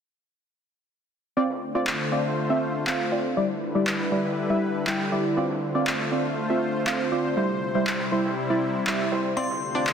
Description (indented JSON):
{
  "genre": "progressive house",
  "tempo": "120 BPM",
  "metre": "4/4",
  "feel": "straight",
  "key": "D dorian",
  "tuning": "A4 = 440 Hz",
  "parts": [
    { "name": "supersaw pad", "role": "sustained chords", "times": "1.4-9.9 s", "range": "C3 to C5", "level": "-28 LUFS", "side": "left 2 dB", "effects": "none" },
    { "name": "deep mellow chord stab", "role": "stabs", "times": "1.4-9.9 s", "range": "G3 to G5", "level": "-25 LUFS", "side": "right 1 dB", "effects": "chorus, vintage 12-bit sampler grit, digital delay" },
    { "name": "big rock drum kit", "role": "drums", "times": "1.4-9.9 s", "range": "hi-hat, snare drum, tambourine", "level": "-42 LUFS", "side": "right 2 dB", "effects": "none" },
    { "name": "electronic handclaps", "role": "drums", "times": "1.9-9.9 s", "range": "none", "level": "-30 LUFS", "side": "left 1 dB", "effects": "none" },
    { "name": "glassy synth bell", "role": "melody", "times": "9.4-9.9 s", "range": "C6", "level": "-29 LUFS", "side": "left 3 dB", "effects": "chorus" },
    { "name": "wide unison pluck", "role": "arpeggios", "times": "9.4-9.8 s", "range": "C4 to D4", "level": "-32 LUFS", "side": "left 3 dB", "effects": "cassette tape, digital delay" }
  ],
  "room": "moderate lush hall reverb, RT60 2.3 s",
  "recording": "dense, heavily limited modern master",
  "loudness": "-23 LUFS",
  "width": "side -7 dB against mid",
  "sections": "1.4-9.9 A section",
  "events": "none",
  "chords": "1.4 Dm7; 3.4 Em7; 5.4 Dm7; 7.4 C; 9.4 Dm7",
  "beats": "| 1.37 1.87 2.37 2.87 | 3.37 3.87 4.37 4.87 | 5.37 5.87 6.37 6.87 | 7.37 7.87 8.37 8.87 | 9.37 9.87"
}